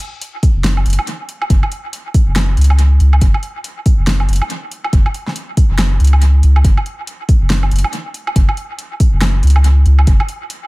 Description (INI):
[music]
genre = deep dubstep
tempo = 140 BPM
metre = 4/4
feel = swing 60% on 16ths, half-time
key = unclear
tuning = A4 = 439 Hz
[part]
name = deep house drum kit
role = drums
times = 0.0-10.6 s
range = hi-hat, snare drum, woodblock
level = -21 LUFS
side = right 1 dB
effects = studio reverb, dub echo
[part]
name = electronic kick drum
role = drums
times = 0.4-10.2 s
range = none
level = -11 LUFS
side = equal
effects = studio reverb
[part]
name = soft dub sub bass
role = bass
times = 0.6-10.2 s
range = F#1 to C#2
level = -10 LUFS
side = equal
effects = none
[sound]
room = digital ambience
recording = echo-heavy mix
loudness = -11 LUFS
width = side -22 dB against mid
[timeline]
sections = 0.0-10.7 A section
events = none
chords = none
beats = 0.22 0.65 1.07 | 1.50 1.93 2.36 2.79 | 3.22 3.65 4.07 4.50 | 4.93 5.36 5.79 6.22 | 6.64 7.07 7.50 7.93 | 8.36 8.79 9.22 9.64 | 10.07 10.50